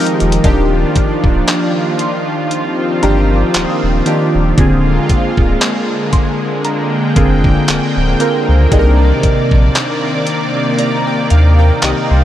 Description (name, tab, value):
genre	contemporary R&B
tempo	58 BPM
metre	4/4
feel	swing 54% on 16ths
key	Eb major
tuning	A4 = 440 Hz
part	warm analog keys	accompaniment	0.0-12.2 s	C3 to Bb5	-16 LUFS	equal	chorus, phaser
part	lush unison pad	sustained chords	0.0-12.2 s	C3 to G5	-17 LUFS	equal	chorus
part	detuned 8-bit digital drum machine	drums	0.1-12.1 s	handclaps, hi-hat, kick drum	-16 LUFS	equal	none
part	warm sub bass	bass	0.2-12.2 s	D1 to Eb2	-12 LUFS	equal	none
part	glassy wavetable pluck	texture	2.0-8.1 s	Bb5 to Eb6	-28 LUFS	right 1 dB	chorus, analog delay
room	moderate huge ambient reverb, RT60 4.1 s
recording	dreamy mix soaked in reverb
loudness	-11 LUFS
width	side -12 dB against mid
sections	0.0-12.2 A section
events	break 0.0-0.4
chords	0.4 Ebmaj9; 4.6 Bb7/D; 8.7 Cm9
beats	| 0.44 1.48 2.51 3.54 | 4.58 5.61 6.65 7.68 | 8.72 9.75 10.79 11.82